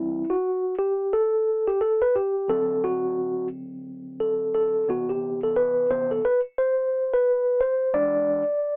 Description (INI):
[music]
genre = hip hop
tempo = 88 BPM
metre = 4/4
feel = swing 60% on 16ths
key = unclear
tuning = A4 = 439 Hz
[part]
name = mellow tine electric piano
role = solo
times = 0.0-8.8 s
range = C3 to D5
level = -24 LUFS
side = equal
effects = none
[sound]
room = moderate booth ambience, RT60 0.2 s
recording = telephone sound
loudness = -24 LUFS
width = mono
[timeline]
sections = 0.0-8.8 A section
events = tine electric piano solo 0.0-8.8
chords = 0.0 Emadd11; 2.5 D7; 4.9 Cmaj7; 7.9 E7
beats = 0.43 1.11 1.80 | 2.48 3.16 3.84 4.52 | 5.21 5.89 6.57 7.25 | 7.93 8.62